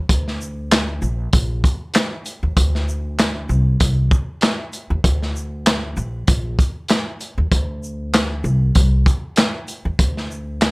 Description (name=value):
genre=hip hop, boom-bap hip-hop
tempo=97 BPM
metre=4/4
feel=swing 56% on 16ths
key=unclear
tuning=A4 = 439 Hz
part: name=upright bass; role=bass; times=0.0-10.7 s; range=Bb1 to Eb2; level=-20 LUFS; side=equal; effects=none
part: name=crunchy breakbeat drum kit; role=drums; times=0.1-10.7 s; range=handclaps, hi-hat, kick drum, shaker, snare drum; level=-17 LUFS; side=equal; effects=none
room=little or no reverb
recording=none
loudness=-17 LUFS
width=side -27 dB against mid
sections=0.1-10.7 A section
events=none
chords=none